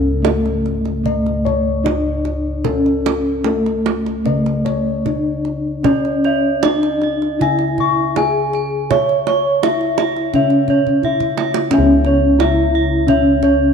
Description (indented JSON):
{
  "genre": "Javanese gamelan",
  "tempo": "75-88 BPM",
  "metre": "4/4",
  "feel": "straight",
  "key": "C# pelog",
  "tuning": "A4 = 443 Hz",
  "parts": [
    { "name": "gamelan-type bronze metallophone", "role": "melody", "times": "0.0-13.7 s", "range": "A3 to C#5", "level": "-17 LUFS", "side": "equal", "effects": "none" },
    { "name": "gamelan-type bossed gongs", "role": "arpeggios", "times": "0.0-13.7 s", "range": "A4 to C#6", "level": "-21 LUFS", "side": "left 6 dB", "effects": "none" },
    { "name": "gamelan-type bossed gongs", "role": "bass", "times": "0.0-13.7 s", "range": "C#2 to C#5", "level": "-21 LUFS", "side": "left 1 dB", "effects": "none" },
    { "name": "kendang", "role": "percussion", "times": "0.2-13.6 s", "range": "none", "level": "-23 LUFS", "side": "right 10 dB", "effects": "none" },
    { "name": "gamelan-type bronze metallophone", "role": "arpeggios", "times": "5.8-13.7 s", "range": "C#5 to C#6", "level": "-22 LUFS", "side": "right 7 dB", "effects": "none" }
  ],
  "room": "moderate echo chamber reverb, RT60 2.2 s",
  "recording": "1960s-style stereo with parts hard left and right",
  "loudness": "-14 LUFS",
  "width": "side -6 dB against mid",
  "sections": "0.0-11.7 A section; 11.7-13.7 B section",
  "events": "drum fill 10.9-11.7",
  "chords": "none"
}